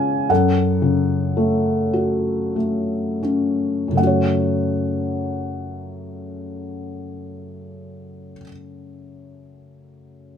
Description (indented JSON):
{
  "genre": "classical, lyrical solo piano",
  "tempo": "26-40 BPM (dotted quarters)",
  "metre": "6/8",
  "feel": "rubato",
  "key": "F# minor",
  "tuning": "A4 = 443 Hz",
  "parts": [
    { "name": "felt-muted upright piano", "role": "solo", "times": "0.0-10.4 s", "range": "F#2 to G#5", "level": "-20 LUFS", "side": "left 1 dB", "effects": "none" }
  ],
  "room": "light reverb",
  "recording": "minimal, uncompressed stereo recording",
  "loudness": "-18 LUFS",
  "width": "side -8 dB against mid",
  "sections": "0.0-4.0 A section; 4.0-8.5 B section",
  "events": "slowing down 0.0-4.0",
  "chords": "0.3 F#m"
}